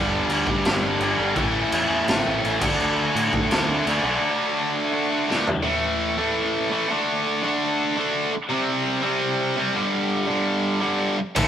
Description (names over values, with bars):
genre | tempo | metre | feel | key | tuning
punk rock | 168 BPM | 4/4 | straight | unclear | A4 = 442 Hz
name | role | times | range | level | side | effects
distorted electric guitar | riff | 0.0-5.5, 11.4-11.5 s | G2 to F#4 | -29 LUFS | equal | overdrive
tight distorted guitar | riff | 0.0-11.5 s | G2 to D4 | -22 LUFS | equal | distortion
growling picked electric bass | bass | 0.0-4.2, 11.4-11.5 s | G1 to A2 | -30 LUFS | equal | overdrive
raw garage drum kit | drums | 0.3-5.6, 11.4 s | crash cymbal, kick drum, snare drum, toms | -24 LUFS | equal | none
room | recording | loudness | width
moderate stone room reverb, RT60 1.1 s | rough rehearsal-room recording | -20 LUFS | side -9 dB against mid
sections
0.0-5.7 A section; 5.7-11.5 B section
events
half time 0.0-5.7; drum fill 5.3-5.7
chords
0.0 G; 1.4 A; 2.6 D; 5.7 A5; 6.9 D5; 8.5 C5; 9.8 G5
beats
0.29 0.65 1.01 | 1.36 1.72 2.08 2.44 | 2.79 3.15 3.51 3.87 | 4.22 4.58 4.94 5.29 | 5.65 6.01 6.37 6.72 | 7.08 7.44 7.79 8.15 | 8.51 8.86 9.22 9.58 | 9.93 10.29 10.65 11.01 | 11.36